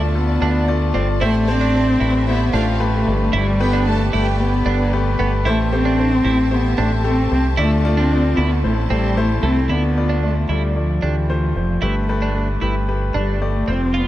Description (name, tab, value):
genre	piano-driven pop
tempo	113 BPM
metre	4/4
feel	straight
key	unclear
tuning	A4 = 440 Hz
part	dark cello	melody	0.0-14.1 s	E3 to C4	-21 LUFS	equal	none
part	clear concert grand piano	accompaniment	0.0-14.1 s	G2 to D5	-24 LUFS	left 4 dB	none
part	warm studio string section	sustained chords	0.0-9.7 s	E4 to A5	-32 LUFS	left 2 dB	none
part	fingered electric bass	bass	0.0-14.1 s	F1 to D2	-19 LUFS	equal	none
part	twelve-string electric guitar	riff	0.4-14.1 s	A3 to F4	-26 LUFS	right 5 dB	wide subtle chorus
part	warm chamber violin section	second line	1.2-4.6 s	C4 to A5	-29 LUFS	right 2 dB	none
room	light reverb, studio reverb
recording	none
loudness	-16 LUFS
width	side -14 dB against mid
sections	0.0-9.7 A section; 9.7-14.1 B section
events	none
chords	0.0 Dm; 1.2 Am7; 3.1 Gadd9; 5.5 Am7; 7.6 Dm; 8.6 Am; 9.7 Dm; 11.8 Gadd9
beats	0.15 0.68 | 1.21 1.74 2.27 2.80 | 3.33 3.87 4.39 4.93 | 5.46 5.99 6.52 7.05 | 7.58 8.11 8.64 9.17 | 9.70 10.23 10.76 11.29 | 11.82 12.35 12.88 13.42 | 13.95